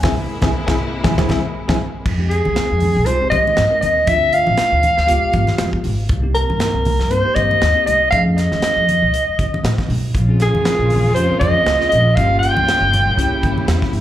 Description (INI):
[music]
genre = electric jazz fusion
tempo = 119 BPM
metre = 4/4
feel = swing 55% on 16ths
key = F minor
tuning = A4 = 440 Hz
[part]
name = bell-like tine electric piano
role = accompaniment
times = 0.0-14.0 s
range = Ab3 to G#5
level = -25 LUFS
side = left 1 dB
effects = medium stereo tremolo, slapback echo
[part]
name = clear studio string section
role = sustained chords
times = 0.0-2.0, 10.2-14.0 s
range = C3 to F4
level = -27 LUFS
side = left 1 dB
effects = none
[part]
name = upright bass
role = bass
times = 0.0-14.0 s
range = G1 to A2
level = -19 LUFS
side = equal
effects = none
[part]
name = modern studio drum kit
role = drums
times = 0.0-14.0 s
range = crash cymbal, hi-hat, kick drum, snare drum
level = -22 LUFS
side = equal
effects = none
[part]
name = congas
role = percussion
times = 0.0-14.0 s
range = none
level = -26 LUFS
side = right 1 dB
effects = none
[part]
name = mellow soprano saxophone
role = melody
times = 2.3-13.9 s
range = Ab4 to G5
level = -16 LUFS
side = equal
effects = slapback echo
[sound]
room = small room ambience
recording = live gig heard through the venue's PA, club reverb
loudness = -14 LUFS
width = side -12 dB against mid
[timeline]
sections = 0.0-2.1 A section; 2.1-14.0 B section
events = band accent 0.0-2.1; drum fill 1.4-2.1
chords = 0.0 Caug7; 2.1 Fm9; 4.1 Dm7; 5.1 Db7#11; 6.1 Cm7; 8.1 F7alt; 10.1 Bbm9; 12.2 Gm7b5; 13.2 C7b9